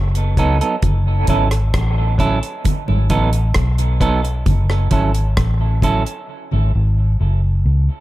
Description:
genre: dub reggae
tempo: 66 BPM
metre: 4/4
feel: straight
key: F# dorian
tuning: A4 = 440 Hz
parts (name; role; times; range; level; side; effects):
- vintage muted fingered electric bass; bass; 0.0-7.9 s; F#1 to C#2; -16 LUFS; equal; none
- deep reggae drum kit; drums; 0.2-6.3 s; hi-hat, kick drum, rim click; -20 LUFS; equal; none
- semi-hollow electric guitar; accompaniment; 0.4-6.0 s; F#3 to A4; -22 LUFS; right 4 dB; tape echo
- congas; percussion; 0.8-6.0 s; none; -28 LUFS; right 4 dB; none
room: studio ambience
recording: echo-heavy mix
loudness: -14 LUFS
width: side -16 dB against mid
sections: 0.0-8.0 A section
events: break 0.0-0.8; drums muted 6.3-8.0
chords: 0.0 B7; 0.8 F#m7; 2.6 B7; 4.5 F#m7; 6.3 F#sus2

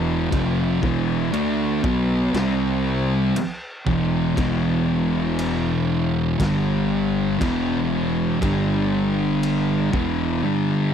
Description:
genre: stoner and doom metal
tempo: 59 BPM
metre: 4/4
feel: straight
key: E phrygian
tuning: A4 = 442 Hz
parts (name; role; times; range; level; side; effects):
- thick fuzz guitar; riff; 0.0-10.9 s; E2 to D4; -23 LUFS; left 8 dB; distortion
- thick fuzz guitar; riff; 0.0-10.9 s; E2 to D4; -23 LUFS; right 10 dB; distortion
- fuzz fingered electric bass; bass; 0.0-10.4 s; E1 to D2; -27 LUFS; equal; overdrive
- raw garage drum kit; drums; 0.3-10.2 s; crash cymbal, kick drum, snare drum; -30 LUFS; equal; none
room: little or no reverb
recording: dry, close 1970s-style studio recording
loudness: -19 LUFS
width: side -8 dB against mid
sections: 0.0-10.9 A section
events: none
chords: 0.0 E5; 2.3 C5; 3.4 E5; 6.4 G5; 7.4 E5; 8.4 G5; 9.9 Em

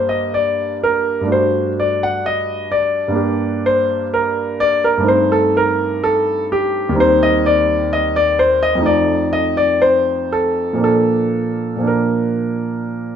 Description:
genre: classical, baroque-style suite movement for grand piano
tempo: 57-65 BPM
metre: 4/4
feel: rubato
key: G minor, Bb major from 7.0 s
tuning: A4 = 440 Hz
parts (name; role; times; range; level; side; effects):
- clear concert grand piano; solo; 0.0-13.2 s; Eb2 to F#5; -14 LUFS; equal; none
room: wet stone room reverb, RT60 1.0 s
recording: heard from further back in the room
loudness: -14 LUFS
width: side -8 dB against mid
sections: 0.0-13.2 A section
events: none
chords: 0.0 Gm; 1.3 D/G; 3.2 Gm; 5.1 Am7b5/G; 7.0 Cm/Eb; 8.8 F7; 10.8 Bb

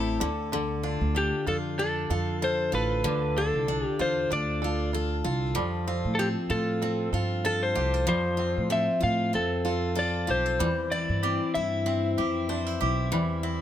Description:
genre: pop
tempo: 95 BPM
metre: 4/4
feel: swing 55% on 16ths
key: unclear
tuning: A4 = 440 Hz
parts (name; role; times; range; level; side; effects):
- electric slide guitar; melody; 0.0-13.6 s; G4 to F5; -28 LUFS; left 1 dB; slapback echo
- picked steel-string acoustic guitar; accompaniment; 0.0-13.6 s; A2 to C5; -30 LUFS; left 2 dB; none
- bluegrass banjo; arpeggios; 0.0-13.6 s; D3 to A4; -35 LUFS; right 5 dB; none
- upright bass; bass; 0.0-13.6 s; A1 to A2; -30 LUFS; right 1 dB; none
room: light reverb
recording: none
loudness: -25 LUFS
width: side -10 dB against mid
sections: 0.0-13.6 A section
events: none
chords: 0.2 Dm; 5.6 Fadd9; 10.6 C

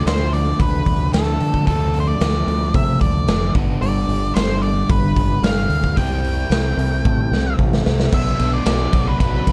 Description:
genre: indie rock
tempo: 112 BPM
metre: 4/4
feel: straight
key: unclear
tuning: A4 = 440 Hz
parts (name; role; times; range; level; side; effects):
- octave-fuzz lead guitar; melody; 0.0-9.5 s; A4 to G5; -27 LUFS; equal; distortion
- crunchy overdriven guitar; riff; 0.0-9.5 s; G2 to E4; -25 LUFS; equal; none
- growling fingered electric bass; bass; 0.0-9.5 s; F1 to D3; -23 LUFS; equal; overdrive
- raw garage drum kit; drums; 0.1-9.5 s; crash cymbal, hi-hat, kick drum, ride cymbal, snare drum, toms; -22 LUFS; equal; none
room: light reverb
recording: dark, warm production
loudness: -18 LUFS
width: mono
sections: 0.0-8.1 A section; 8.1-9.5 B section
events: drum fill 7.0-8.1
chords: 0.0 Dm; 3.6 G; 6.0 C; 8.1 Bm

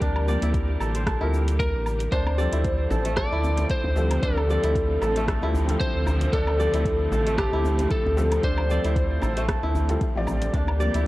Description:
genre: organic downtempo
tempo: 114 BPM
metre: 4/4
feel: swing 55% on 16ths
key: D minor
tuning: A4 = 441 Hz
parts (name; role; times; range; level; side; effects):
- electric slide guitar; melody; 0.0-9.4 s; G4 to D5; -28 LUFS; equal; none
- felt-muted upright piano; accompaniment; 0.0-11.1 s; F3 to D5; -32 LUFS; left 1 dB; sidechain pumping
- clear symphonic string section; sustained chords; 0.0-11.1 s; D3 to G4; -33 LUFS; right 1 dB; sidechain pumping
- kora; arpeggios; 0.0-11.1 s; A3 to D5; -30 LUFS; right 1 dB; digital delay
- warm sub bass; bass; 0.0-11.1 s; A1 to D2; -25 LUFS; equal; sidechain pumping
- afro-pop drum kit; drums; 0.0-11.0 s; cabasa, hi-hat, rim click, woodblock; -34 LUFS; equal; overdrive, studio reverb
- electronic kick drum; drums; 0.0-10.7 s; none; -27 LUFS; equal; overdrive, studio reverb
- djembe; percussion; 2.1-10.8 s; none; -33 LUFS; left 1 dB; none
room: light reverb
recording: worn, warbling old tape, cassette tape, warbly pitch drift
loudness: -21 LUFS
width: side -18 dB against mid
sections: 0.0-11.1 A section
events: none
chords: 0.0 Gm; 2.1 Dm7; 10.5 Gm

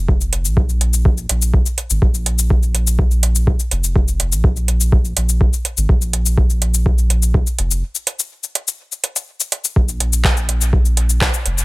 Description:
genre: dub techno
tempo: 124 BPM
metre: 4/4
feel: straight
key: unclear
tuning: A4 = 441 Hz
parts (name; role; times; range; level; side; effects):
- soft dub sub bass; bass; 0.0-11.6 s; F1 to Bb1; -17 LUFS; equal; sidechain pumping
- electronic kick drum; drums; 0.1-11.3 s; none; -16 LUFS; equal; overdrive
- booming analog drum machine; drums; 0.2-11.6 s; cabasa, handclaps, hi-hat; -19 LUFS; left 1 dB; overdrive
room: little or no reverb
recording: none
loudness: -14 LUFS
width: side -21 dB against mid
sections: 0.0-9.8 A section; 9.8-11.6 A section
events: break 7.8-9.8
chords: none

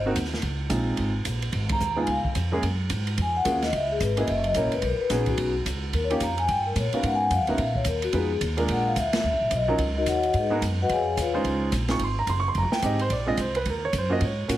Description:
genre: jazz, small-group swing and bop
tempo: 218 BPM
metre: 4/4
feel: swing 62% on 8ths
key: F# major, Db major from 11.4 s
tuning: A4 = 439 Hz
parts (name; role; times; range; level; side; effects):
- vibraphone with soft mallets; melody; 0.0-11.3 s; D#4 to Bb5; -25 LUFS; left 3 dB; none
- upright bass; bass; 0.0-14.6 s; E1 to A#2; -28 LUFS; equal; none
- warm grand piano; accompaniment; 0.1-14.6 s; Gb2 to Db6; -27 LUFS; right 2 dB; none
- open jazz drum kit; drums; 0.2-14.6 s; hi-hat, kick drum, ride cymbal, snare drum; -32 LUFS; right 1 dB; none
room: moderate large studio reverb, RT60 0.9 s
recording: heavily compressed radio sound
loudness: -22 LUFS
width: side -13 dB against mid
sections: 0.0-2.6 A section; 2.6-11.4 B section; 11.4-14.6 C section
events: band accent 1.7, 9.1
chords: 0.4 Dbmaj7; 1.5 Abm; 2.1 Db; 2.6 F#maj9; 3.7 C#m; 4.3 F#7; 4.8 B6; 5.9 D#7; 7.0 G#m11; 8.1 Fm7b5; 8.7 A#7; 9.2 D#m7; 10.3 G#m7; 10.9 C#; 11.4 Dbmaj7; 12.6 Fm7; 13.1 Bb7; 13.7 Ebm9

